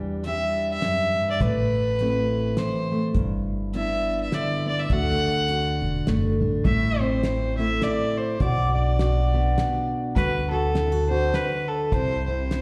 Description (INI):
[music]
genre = acoustic folk duo or small band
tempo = 103 BPM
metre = 3/4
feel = swing 58% on 8ths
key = unclear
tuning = A4 = 441 Hz
[part]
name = fingerpicked steel-string acoustic guitar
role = accompaniment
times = 0.0-12.6 s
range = E2 to G4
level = -29 LUFS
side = equal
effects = slapback echo
[part]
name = upright bass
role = bass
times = 0.0-12.6 s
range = E1 to E2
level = -28 LUFS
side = equal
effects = none
[part]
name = warm fiddle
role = melody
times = 0.2-6.1 s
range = B4 to F#5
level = -28 LUFS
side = equal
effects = slapback echo
[part]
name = cloth-damped thuddy drum kit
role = drums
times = 0.2-12.6 s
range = hi-hat, kick drum, snare drum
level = -29 LUFS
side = equal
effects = none
[part]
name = warm fiddle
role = second line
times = 6.6-12.6 s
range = A4 to E5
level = -29 LUFS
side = equal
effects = slapback echo
[sound]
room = moderate club reverb, RT60 0.7 s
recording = live gig heard through the venue's PA, recital hall reverb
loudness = -24 LUFS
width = mono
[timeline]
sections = 0.0-6.7 A section; 6.7-12.6 B section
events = fiddle solo 6.7-12.6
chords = 0.0 Em7; 1.4 Amadd9; 3.1 G6; 4.9 D; 6.7 Am; 8.4 Bm; 10.2 D; 11.9 C